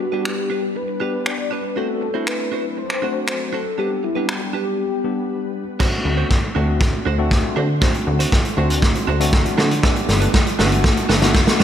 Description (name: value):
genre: dance-pop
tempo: 119 BPM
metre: 4/4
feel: straight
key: unclear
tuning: A4 = 441 Hz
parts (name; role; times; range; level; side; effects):
- warm velvety synth lead; melody; 0.0-5.5 s; E4 to D5; -25 LUFS; left 2 dB; chorus, ping-pong delay, slapback echo
- tine electric piano; accompaniment; 0.0-11.6 s; G3 to G4; -25 LUFS; left 3 dB; medium stereo tremolo, sidechain pumping, slapback echo
- ethereal airy pad; sustained chords; 0.0-11.6 s; F#3 to C6; -31 LUFS; right 1 dB; ensemble chorus, built-in reverb, sidechain pumping
- direct-recorded clean electric guitar; riff; 0.0-11.6 s; D4 to C5; -28 LUFS; right 8 dB; lush chorus, slapback echo
- loose indie drum kit; drums; 0.3-11.6 s; crash cymbal, finger snaps, hi-hat, kick drum, snare drum; -19 LUFS; equal; none
- riser; sound effects; 8.6-11.6 s; none; -29 LUFS; right 2 dB; none
- plucky analog bass; bass; 6.1-11.6 s; G1 to D3; -20 LUFS; equal; sidechain pumping
room: light reverb, small room ambience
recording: none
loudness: -17 LUFS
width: side -10 dB against mid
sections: 0.0-5.8 A section; 5.8-11.6 B section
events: silent gap 4.8-5.8; build-up 5.8-11.6; drum fill 5.8-11.6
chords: 0.0 G; 1.8 D7; 3.8 G; 5.8 D7; 9.8 Gadd9